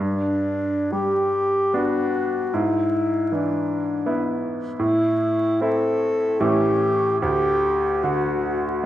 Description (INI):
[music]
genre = classical, romantic duo for alto saxophone and grand piano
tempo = 61-84 BPM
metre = 3/4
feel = rubato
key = G major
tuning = A4 = 439 Hz
[part]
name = warm alto saxophone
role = melody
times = 0.0-8.9 s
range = D4 to A4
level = -21 LUFS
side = left 1 dB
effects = none
[part]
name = bright concert grand piano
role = accompaniment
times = 0.0-8.9 s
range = D2 to E4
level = -24 LUFS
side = right 2 dB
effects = none
[sound]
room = wet recital hall reverb, RT60 1.4 s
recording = vinyl crackle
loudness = -19 LUFS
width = side -13 dB against mid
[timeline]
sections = 0.0-8.9 A section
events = none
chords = 0.0 G; 2.5 E7/G#; 4.8 Am; 6.4 A7; 7.2 D